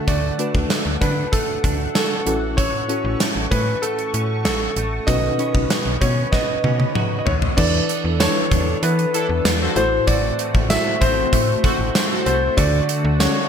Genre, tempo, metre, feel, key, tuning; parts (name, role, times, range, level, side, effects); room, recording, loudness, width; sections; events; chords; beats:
1980s-style pop; 96 BPM; 4/4; straight; A4 = 440 Hz
warm concert grand piano; melody; 0.0-13.5 s; A4 to E5; -23 LUFS; equal
mellow FM electric piano; accompaniment; 0.0-13.5 s; A2 to D5; -26 LUFS; left 2 dB; chorus, tremolo
phased analog pad; sustained chords; 0.0-13.5 s; D3 to C#6; -29 LUFS; equal; phaser, chorus
direct-recorded clean electric guitar; riff; 0.0-13.5 s; D#3 to A4; -30 LUFS; right 3 dB; ensemble chorus, ping-pong delay
slap-like FM bass; bass; 0.1-13.3 s; A1 to E3; -23 LUFS; equal
gated 80s drum kit; drums; 0.1-13.3 s; crash cymbal, hi-hat, kick drum, snare drum, tambourine, toms; -21 LUFS; equal; gated reverb
analog synth brass; stabs; 9.1-12.4 s; D4 to C5; -29 LUFS; left 1 dB; chorus, ping-pong delay
moderate plate reverb, RT60 3.6 s; bright 1980s-style digital production; -17 LUFS; side -7 dB against mid
0.0-7.6 A section; 7.6-13.5 B section
drum fill 6.3-7.6
0.0 D; 2.3 A6; 5.1 Badd9; 7.6 E7sus4; 9.8 Am6; 12.6 Dmaj7
| 0.08 0.70 1.33 1.95 | 2.58 3.20 3.83 4.45 | 5.08 5.70 6.33 6.95 | 7.58 8.20 8.83 9.45 | 10.08 10.70 11.33 11.95 | 12.58 13.20